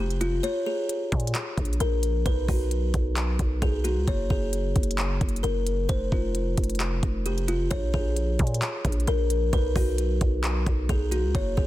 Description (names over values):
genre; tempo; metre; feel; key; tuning
hip hop, trap; 132 BPM; 4/4; half-time; unclear; A4 = 440 Hz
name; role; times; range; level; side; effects
buzzing kalimba; melody; 0.0-11.7 s; F4 to Db5; -29 LUFS; left 1 dB; tape echo
growling 808-style bass; bass; 0.0-11.7 s; F1 to Bb2; -26 LUFS; equal; none
trap drum kit; drums; 0.1-11.7 s; handclaps, hi-hat, kick drum, rim click; -27 LUFS; equal; none
room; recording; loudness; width
digital ambience; dense, heavily limited modern master; -23 LUFS; side -15 dB against mid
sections
0.0-11.7 A section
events
kick muted 0.4-0.9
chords
0.4 Bb7(no3); 2.3 B5; 4.1 Gb; 5.9 N.C.; 7.7 Bb7(no3); 9.5 B5